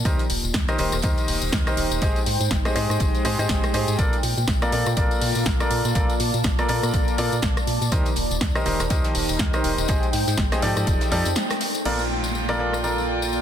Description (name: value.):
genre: piano house.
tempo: 122 BPM.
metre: 4/4.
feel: swing 58% on 16ths.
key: Bb major.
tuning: A4 = 444 Hz.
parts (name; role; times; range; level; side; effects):
organ-like FM bass; bass; 0.0-13.4 s; Eb1 to Bb2; -27 LUFS; equal; sidechain pumping.
warbly tape-like pad; texture; 0.0-13.4 s; Ab3 to A5; -29 LUFS; equal; chorus, built-in reverb, sidechain pumping.
clear baby grand piano; riff; 0.1-13.4 s; Eb3 to Eb5; -26 LUFS; equal; sidechain pumping, low-pass filter, tape echo.
electronic kick drum; drums; 0.1-11.0 s; none; -24 LUFS; equal; studio reverb.
house drum kit; drums; 0.1-12.8 s; crash cymbal, hi-hat, rim click, snare drum; -28 LUFS; left 1 dB; studio reverb.
warm soul drum kit; drums; 0.1-11.7 s; hi-hat, snare drum; -36 LUFS; right 6 dB; high-pass filter on hats, studio reverb, high-pass filter on snare, high-pass filter on room.
tambourine; percussion; 0.1-13.4 s; none; -34 LUFS; left 8 dB; none.
rich chamber violin section; sustained chords; 11.9-13.4 s; F4 to G5; -30 LUFS; right 2 dB; sidechain pumping.
downlifter; sound effects; 11.9-13.4 s; none; -31 LUFS; equal; none.
room: light reverb, studio ambience.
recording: dense, heavily limited modern master.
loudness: -20 LUFS.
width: side -9 dB against mid.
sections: 0.0-11.9 A section; 11.9-13.4 B section.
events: break 11.4-11.9; band accent 11.4.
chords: 0.1 Eb6; 2.0 Abmaj7; 4.0 Bbmaj7; 7.9 Eb6; 9.9 Abmaj7; 10.9 F13; 11.9 Bbmaj7.